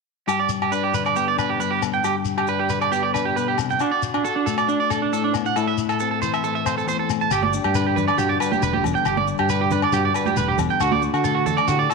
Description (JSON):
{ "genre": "highlife guitar band", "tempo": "137 BPM", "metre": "4/4", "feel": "straight", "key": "G major", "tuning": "A4 = 436 Hz", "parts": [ { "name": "clean electric guitar", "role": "accompaniment", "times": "0.3-11.9 s", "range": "E2 to G4", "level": "-26 LUFS", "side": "left 13 dB", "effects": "wide subtle chorus" }, { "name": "electric guitar at the edge of break-up", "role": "arpeggios", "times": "0.3-11.9 s", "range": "D4 to A5", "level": "-21 LUFS", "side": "right 9 dB", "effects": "slapback echo" }, { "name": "agogo bells", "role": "percussion", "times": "0.3-11.9 s", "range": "none", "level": "-29 LUFS", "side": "left 16 dB", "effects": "none" }, { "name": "shekere", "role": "percussion", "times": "0.3-11.9 s", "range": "none", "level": "-31 LUFS", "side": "left 8 dB", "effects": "none" }, { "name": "fingered electric bass", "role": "bass", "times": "7.3-11.9 s", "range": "E1 to D3", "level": "-25 LUFS", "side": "left 1 dB", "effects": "none" }, { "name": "congas", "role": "percussion", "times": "7.4-11.6 s", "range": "none", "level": "-28 LUFS", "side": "right 10 dB", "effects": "none" } ], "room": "moderate echo chamber reverb, RT60 2.1 s", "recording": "1960s-style stereo with parts hard left and right", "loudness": "-19 LUFS", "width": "side -4 dB against mid", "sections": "0.3-7.3 A section; 7.3-11.9 B section", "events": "none", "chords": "0.3 G; 3.8 D; 5.6 Am; 7.3 G; 10.8 D" }